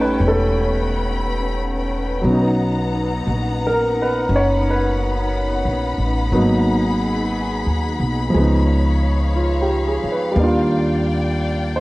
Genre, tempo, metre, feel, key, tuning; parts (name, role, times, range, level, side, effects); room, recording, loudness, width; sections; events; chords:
jazz ballad; 59 BPM; 4/4; swing 67% on 8ths; A4 = 439 Hz
warm grand piano; accompaniment; 0.0-11.8 s; E3 to C#5; -20 LUFS; equal
warm symphonic string section; sustained chords; 0.0-11.8 s; B3 to B5; -25 LUFS; left 2 dB
upright bass; bass; 0.0-11.8 s; E1 to Eb2; -21 LUFS; equal
little or no reverb; worn, warbling old tape, cassette tape, warbly pitch drift; -16 LUFS; side -20 dB against mid
0.0-11.8 A section
0.0 A9; 2.3 Bmaj7; 6.3 Abm7; 8.3 Db9; 10.4 Ebmaj9